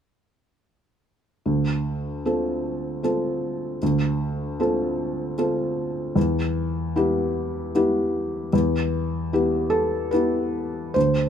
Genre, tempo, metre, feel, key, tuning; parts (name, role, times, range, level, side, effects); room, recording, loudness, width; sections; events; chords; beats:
neoclassical minimalist piano; 76 BPM; 3/4; rubato; D dorian; A4 = 437 Hz
felt-muted upright piano; solo; 1.5-11.3 s; D2 to C5; -22 LUFS; equal
light reverb; minimal, uncompressed stereo recording; -22 LUFS; side -8 dB against mid
1.4-11.0 A section
1.4 Dm7; 6.2 Em
| 1.44 2.24 3.03 | 3.81 4.60 5.38 | 6.16 6.95 7.74 | 8.53 9.32 10.13 | 10.96